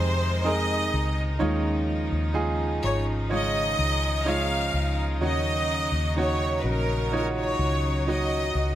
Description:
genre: pop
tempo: 63 BPM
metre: 4/4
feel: straight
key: Eb minor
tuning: A4 = 440 Hz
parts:
  - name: bright studio violin section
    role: melody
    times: 0.0-8.8 s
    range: Bb4 to F5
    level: -28 LUFS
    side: equal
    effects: none
  - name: bright concert grand piano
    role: accompaniment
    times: 0.0-8.8 s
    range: Eb3 to Db5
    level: -29 LUFS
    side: right 4 dB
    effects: none
  - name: clear chamber string section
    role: sustained chords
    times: 0.0-8.8 s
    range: C3 to Eb4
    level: -34 LUFS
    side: equal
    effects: none
  - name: nylon-string guitar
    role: arpeggios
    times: 0.0-8.8 s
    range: Eb3 to Ab4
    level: -34 LUFS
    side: left 4 dB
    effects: tape echo
  - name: vintage muted fingered electric bass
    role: bass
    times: 0.0-8.8 s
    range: Ab1 to F2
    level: -27 LUFS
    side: equal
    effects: none
room: light reverb, small room ambience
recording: none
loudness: -23 LUFS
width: side -12 dB against mid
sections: 0.0-8.8 A section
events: none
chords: 0.0 Ab; 1.4 Dbadd9; 5.2 Ebm7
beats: 0.46 | 1.41 2.36 3.31 4.27 | 5.22 6.17 7.12 8.08

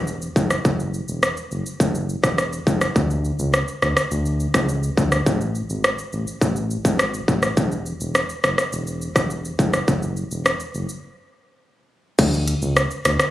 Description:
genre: dancehall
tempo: 104 BPM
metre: 4/4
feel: straight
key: unclear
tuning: A4 = 442 Hz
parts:
  - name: round analog bass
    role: bass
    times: 0.0-13.2 s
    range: E1 to D2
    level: -23 LUFS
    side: equal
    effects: none
  - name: industrial drum kit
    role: drums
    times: 0.1-13.3 s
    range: crash cymbal, hi-hat, kick drum, rim click, shaker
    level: -20 LUFS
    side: equal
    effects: distortion
room: little or no reverb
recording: recorded on a phone in the room, studio reverb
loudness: -19 LUFS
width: side -14 dB against mid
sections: 0.0-12.2 A section; 12.2-13.3 B section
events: break 11.0-12.2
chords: none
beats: 0.07 | 0.65 1.23 1.80 2.38 | 2.96 3.53 4.11 4.69 | 5.26 5.84 6.42 7.00 | 7.57 8.15 8.73 9.30 | 9.88 10.46 11.03 11.61 | 12.19 12.77

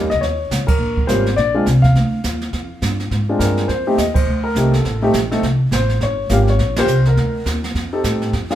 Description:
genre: jazz piano trio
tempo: 207 BPM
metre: 4/4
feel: swing 60% on 8ths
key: unclear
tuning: A4 = 440 Hz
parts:
  - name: warm grand piano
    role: melody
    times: 0.0-8.6 s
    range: G3 to F5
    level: -19 LUFS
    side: left 1 dB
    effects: none
  - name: upright bass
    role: bass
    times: 0.0-8.6 s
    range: G1 to A2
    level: -18 LUFS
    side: equal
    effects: none
  - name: jazz brush drum kit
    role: drums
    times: 0.1-8.6 s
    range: brushed snare drum, hi-hat, kick drum, ride cymbal, snare drum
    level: -22 LUFS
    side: right 2 dB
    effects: none
room: moderate studio reverb, RT60 0.8 s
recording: band playing live in one room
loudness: -15 LUFS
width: side -12 dB against mid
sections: 0.0-8.3 A section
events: band accent 0.7, 4.1, 6.7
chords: 0.0 Eb7(no3); 1.4 Bb7; 3.7 F7; 6.0 Bbm13/G; 7.2 Bb; 7.8 F7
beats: | 0.22 0.51 0.80 1.09 | 1.38 1.67 1.96 2.25 | 2.53 2.82 3.11 3.40 | 3.69 3.98 4.27 4.56 | 4.85 5.14 5.43 5.72 | 6.01 6.30 6.59 6.88 | 7.17 7.46 7.75 8.04 | 8.33

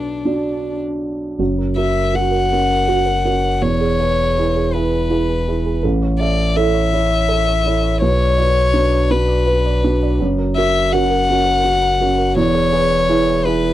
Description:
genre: neoclassical piano and strings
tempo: 55 BPM (dotted quarters)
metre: 6/8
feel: rubato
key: unclear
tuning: A4 = 440 Hz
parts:
  - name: rich violin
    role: melody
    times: 0.0-13.7 s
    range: D4 to F#5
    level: -18 LUFS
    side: left 4 dB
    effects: none
  - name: warm concert grand piano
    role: accompaniment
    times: 0.0-13.7 s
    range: A1 to E5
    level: -19 LUFS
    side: right 3 dB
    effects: none
  - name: harp-like synth pluck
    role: arpeggios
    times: 1.4-13.7 s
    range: E4 to D5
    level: -25 LUFS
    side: right 5 dB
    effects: chorus, slapback echo
  - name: sub bass with octave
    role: bass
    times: 1.4-13.7 s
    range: E1 to B1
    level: -20 LUFS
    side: equal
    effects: none
room: little or no reverb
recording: dry, close 1970s-style studio recording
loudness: -14 LUFS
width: side -13 dB against mid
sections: 0.0-1.4 A section; 1.4-13.7 B section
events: none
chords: 0.0 Bm; 1.4 F#; 3.6 E; 5.8 A; 8.0 Bm; 10.2 F#; 12.4 E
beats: 0.25 | 1.40 2.51 | 3.62 4.73 | 5.84 6.93 | 8.02 9.11 | 10.20 11.28 | 12.37 13.46

